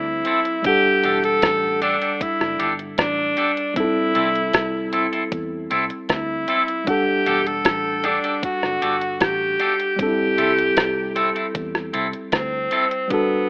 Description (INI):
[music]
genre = lovers rock reggae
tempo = 77 BPM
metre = 4/4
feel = straight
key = unclear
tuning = A4 = 440 Hz
[part]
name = warm tenor saxophone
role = melody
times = 0.0-13.5 s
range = B3 to A4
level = -24 LUFS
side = equal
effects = tape echo
[part]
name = tine electric piano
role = accompaniment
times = 0.0-13.5 s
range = G3 to F#5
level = -28 LUFS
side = equal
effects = overdrive, dub echo
[part]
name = vintage muted fingered electric bass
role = bass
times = 0.0-12.7 s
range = E1 to E2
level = -39 LUFS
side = equal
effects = none
[part]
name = detuned 8-bit digital drum machine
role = drums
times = 0.2-13.3 s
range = hi-hat, kick drum, rim click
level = -25 LUFS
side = equal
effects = none
[part]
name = twangy electric guitar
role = stabs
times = 0.3-12.8 s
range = C4 to A4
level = -25 LUFS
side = equal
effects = none
[sound]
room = light reverb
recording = rough home demo mix, AM radio sound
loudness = -21 LUFS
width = mono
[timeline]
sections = 0.0-13.5 A section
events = none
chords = 0.0 C6; 0.7 Em11 (rootless); 3.8 C6; 6.9 Em11 (rootless); 10.0 C6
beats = | 0.65 1.43 2.21 2.98 | 3.76 4.54 5.32 6.10 | 6.88 7.66 8.43 9.21 | 9.99 10.77 11.55 12.33 | 13.11